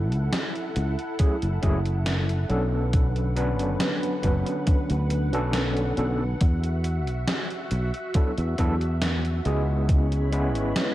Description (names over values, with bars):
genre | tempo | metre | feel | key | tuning
vaporwave | 69 BPM | 4/4 | straight | B dorian | A4 = 440 Hz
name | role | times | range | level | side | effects
soft string machine | sustained chords | 0.0-10.9 s | D3 to B5 | -33 LUFS | equal | ensemble chorus, vintage 12-bit sampler grit
fretless electric bass | bass | 0.0-10.7 s | F#1 to E2 | -25 LUFS | equal | none
gated 80s digital drum machine | drums | 0.1-10.9 s | hi-hat, snare drum | -30 LUFS | equal | gated reverb, gated reverb snare
overdriven tine electric piano | accompaniment | 1.2-10.9 s | F#3 to B4 | -29 LUFS | equal | medium tremolo, analog chorus, analog delay
electronic kick drum | drums | 1.2-10.1 s | none | -22 LUFS | equal | none
room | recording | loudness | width
light reverb | none | -22 LUFS | side -15 dB against mid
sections
0.0-10.9 A section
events
none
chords
0.0 F#m7; 2.5 Bm7; 6.4 Esus2; 9.9 C#m7